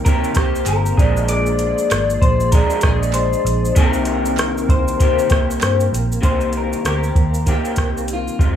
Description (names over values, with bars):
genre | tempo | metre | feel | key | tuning
indie pop, bedroom pop | 97 BPM | 4/4 | swing 60% on 16ths | C minor | A4 = 439 Hz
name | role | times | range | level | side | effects
electric guitar through a small old amp | melody | 0.0-8.6 s | F4 to D5 | -22 LUFS | left 4 dB | lush chorus, analog delay
electric guitar through a small old amp | accompaniment | 0.0-8.6 s | F2 to Ab4 | -22 LUFS | left 2 dB | lush chorus, vibrato effect
hollow soft pad | sustained chords | 0.0-6.2 s | C3 to D5 | -30 LUFS | right 2 dB | ensemble chorus
vintage muted picked electric bass | bass | 0.1-8.6 s | F1 to C3 | -21 LUFS | right 1 dB | none
soft vintage rhythm box | drums | 0.1-8.6 s | hi-hat, kick drum, rim click, shaker | -18 LUFS | right 1 dB | none
group handclap | percussion | 0.7-5.8 s | none | -34 LUFS | right 13 dB | none
room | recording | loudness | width
little or no reverb | studio reverb | -15 LUFS | side -9 dB against mid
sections
0.0-6.2 A section; 6.2-8.6 B section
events
none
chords
0.0 Cm7; 1.0 Bb7; 3.8 Cm7